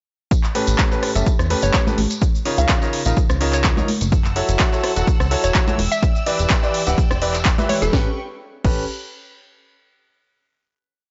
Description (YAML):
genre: piano house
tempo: 126 BPM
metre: 4/4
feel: swing 54% on 16ths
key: A mixolydian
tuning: A4 = 439 Hz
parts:
  - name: electronic kick drum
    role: drums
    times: 0.3-8.7 s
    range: none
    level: -21 LUFS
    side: equal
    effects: none
  - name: house drum kit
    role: drums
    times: 0.3-8.7 s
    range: crash cymbal, handclaps, hi-hat, rim click, shaker, snare drum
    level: -27 LUFS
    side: equal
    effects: overdrive
  - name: tambourine and congas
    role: percussion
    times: 0.3-7.9 s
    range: none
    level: -31 LUFS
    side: equal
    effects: none
  - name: bright upright piano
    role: riff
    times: 0.6-8.8 s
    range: A2 to F#5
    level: -25 LUFS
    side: equal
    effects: sidechain pumping
  - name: plucky analog bass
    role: bass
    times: 0.7-8.9 s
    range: D1 to E2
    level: -24 LUFS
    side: equal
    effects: sidechain pumping
  - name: hollow square pluck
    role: melody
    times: 1.6-7.9 s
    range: A4 to E#5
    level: -27 LUFS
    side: equal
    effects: chorus, analog delay
  - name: bright studio violin section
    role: sustained chords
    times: 4.1-8.2 s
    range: A4 to E6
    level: -33 LUFS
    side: equal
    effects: sidechain pumping
room: digital ambience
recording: dry, gritty hardware recording, transformer saturation, nothing above 7.7 kHz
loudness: -19 LUFS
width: mono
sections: 0.3-7.9 drop; 7.9-9.8 final chord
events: drop 0.3-7.9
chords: 0.3 A9; 2.2 C#69; 3.9 F#m7; 5.8 Em7; 7.9 A9